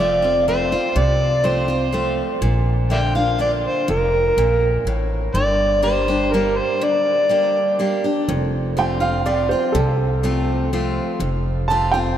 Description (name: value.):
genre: honky-tonk and classic country.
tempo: 123 BPM.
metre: 3/4.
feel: straight.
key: F major.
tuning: A4 = 440 Hz.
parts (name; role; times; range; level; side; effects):
overdriven harmonica; melody; 0.0-7.8 s; Bb4 to G5; -20 LUFS; right 1 dB; none.
picked steel-string acoustic guitar; accompaniment; 0.0-12.2 s; F2 to G4; -23 LUFS; left 1 dB; none.
upright bass; bass; 0.0-12.2 s; F1 to C2; -22 LUFS; equal; none.
warm upright piano; second line; 8.8-12.0 s; A4 to A5; -21 LUFS; right 3 dB; none.
room: wet cathedral reverb, RT60 6.1 s.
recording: in a vast, echoing space.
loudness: -17 LUFS.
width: side -10 dB against mid.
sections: 0.0-8.3 A section; 8.3-12.2 A section.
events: upright piano solo 8.3-12.2.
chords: 0.0 F; 2.4 Bb; 5.4 Gm; 8.3 F.